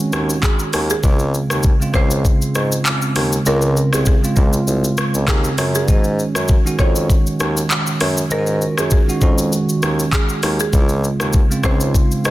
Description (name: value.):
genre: afrobeats.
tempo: 99 BPM.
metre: 4/4.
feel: swing 55% on 16ths.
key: Db major.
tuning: A4 = 438 Hz.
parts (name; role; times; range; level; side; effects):
buzzing marimba with medium mallets; melody; 0.0-12.3 s; Ab4 to Db5; -25 LUFS; right 1 dB; digital delay.
bell-like tine electric piano; accompaniment; 0.0-12.3 s; Db3 to Gb4; -20 LUFS; right 2 dB; phaser.
warm bassoon; bass; 0.1-12.3 s; C2 to Ab2; -21 LUFS; equal; none.
afro-pop drum kit; drums; 0.1-12.3 s; handclaps, hi-hat, kick drum, rim click, shaker; -17 LUFS; equal; soft clipping on snare.
room: digital ambience.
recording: dense, heavily limited modern master.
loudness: -14 LUFS.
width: side -16 dB against mid.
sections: 0.0-12.3 A section.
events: none.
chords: 0.0 Ab7sus4; 1.0 Dbmaj7; 5.9 Ab7sus4; 10.7 Dbmaj7.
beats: 0.43 | 1.03 1.64 2.25 2.85 | 3.46 4.07 4.67 5.28 | 5.88 6.49 7.10 7.70 | 8.31 8.91 9.52 10.13 | 10.73 11.34 11.95.